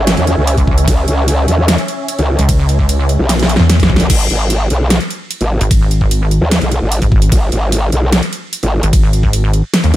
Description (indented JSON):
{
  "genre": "heavy wobble dubstep",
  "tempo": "149 BPM",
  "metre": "4/4",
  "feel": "half-time",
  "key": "G# minor",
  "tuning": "A4 = 440 Hz",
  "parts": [
    { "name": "supersaw chords", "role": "sustained chords", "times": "0.0-4.1 s", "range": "C#4 to G#5", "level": "-21 LUFS", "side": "right 1 dB", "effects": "sidechain pumping, low-pass filter" },
    { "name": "growl bass", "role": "bass", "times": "0.0-10.0 s", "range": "G#1 to E2", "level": "-13 LUFS", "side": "equal", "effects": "chorus, overdrive" },
    { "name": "dubstep drum kit", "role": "drums", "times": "0.1-10.0 s", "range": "crash cymbal, hi-hat, ride cymbal, snare drum", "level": "-17 LUFS", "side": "equal", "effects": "overdrive" },
    { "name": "pulsing pluck wobble bass", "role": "bass", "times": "0.6-9.9 s", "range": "G#1 to E2", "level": "-12 LUFS", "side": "equal", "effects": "chorus, overdrive" },
    { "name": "electronic kick drum", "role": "drums", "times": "0.6-9.3 s", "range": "none", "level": "-13 LUFS", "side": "equal", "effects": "overdrive" }
  ],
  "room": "digital ambience",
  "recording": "none",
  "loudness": "-10 LUFS",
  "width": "side -14 dB against mid",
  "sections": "0.0-4.1 A section; 4.1-10.0 A section",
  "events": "drop 0.0-4.1, 4.1-10.0; drum fill 3.3-4.1",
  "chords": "0.0 C#m; 4.1 G#m",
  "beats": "0.07 0.47 | 0.88 1.28 1.68 2.08 | 2.49 2.89 3.29 3.69 | 4.10 4.50 4.90 5.31 | 5.71 6.11 6.51 6.92 | 7.32 7.72 8.12 8.53 | 8.93 9.33 9.74"
}